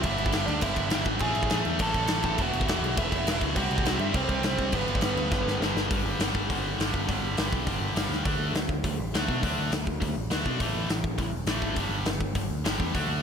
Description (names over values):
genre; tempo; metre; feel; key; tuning
punk rock; 205 BPM; 4/4; straight; unclear; A4 = 444 Hz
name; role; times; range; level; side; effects
smooth overdriven lead guitar; melody; 0.0-5.6 s; B3 to A5; -31 LUFS; right 3 dB; ping-pong delay
tight distorted guitar; riff; 0.0-13.2 s; E2 to D4; -30 LUFS; left 1 dB; distortion
growling picked electric bass; bass; 0.0-13.2 s; E1 to B2; -32 LUFS; equal; overdrive
big rock drum kit; drums; 0.0-13.0 s; crash cymbal, hi-hat, kick drum, snare drum; -29 LUFS; equal; none
room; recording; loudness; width
light reverb; none; -25 LUFS; side -7 dB against mid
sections
0.0-5.9 A section; 5.9-8.3 B section; 8.3-13.2 C section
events
drum fill 5.3-5.9, 8.1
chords
0.0 G5; 1.2 A5; 2.4 E5; 3.6 C; 4.7 G; 5.9 G5; 8.3 D5; 10.6 A5; 11.8 G5